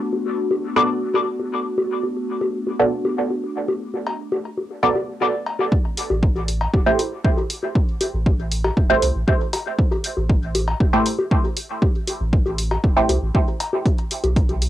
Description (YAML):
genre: dub techno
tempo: 118 BPM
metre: 4/4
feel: straight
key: A dorian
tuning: A4 = 441 Hz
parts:
  - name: warbly tape-like pad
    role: sustained chords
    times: 0.0-5.7 s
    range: A3 to F#4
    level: -26 LUFS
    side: left 1 dB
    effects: chorus, built-in reverb, phaser, sidechain pumping, cassette tape
  - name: bongos and cowbell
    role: percussion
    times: 0.1-14.6 s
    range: none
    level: -25 LUFS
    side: left 2 dB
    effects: sidechain pumping on perc, cassette tape, dub echo
  - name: filtered dub chord stab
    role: stabs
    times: 0.8-13.1 s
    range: A3 to D5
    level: -22 LUFS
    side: right 1 dB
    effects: phaser, sidechain pumping, cassette tape, dub echo
  - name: electronic kick drum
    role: drums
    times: 5.7-14.5 s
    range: none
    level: -19 LUFS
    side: equal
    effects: overdrive, cassette tape
  - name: electronic hi-hat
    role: drums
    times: 6.0-14.7 s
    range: none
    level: -28 LUFS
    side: equal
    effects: overdrive, cassette tape
  - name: soft dub sub bass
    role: bass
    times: 6.1-14.7 s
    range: E1 to C2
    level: -23 LUFS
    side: equal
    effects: sidechain pumping
room: light reverb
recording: home recording on cassette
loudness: -18 LUFS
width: side -13 dB against mid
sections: 0.0-5.7 A section; 5.7-14.7 B section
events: none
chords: 0.0 Bm7; 5.7 Am7; 13.9 N.C.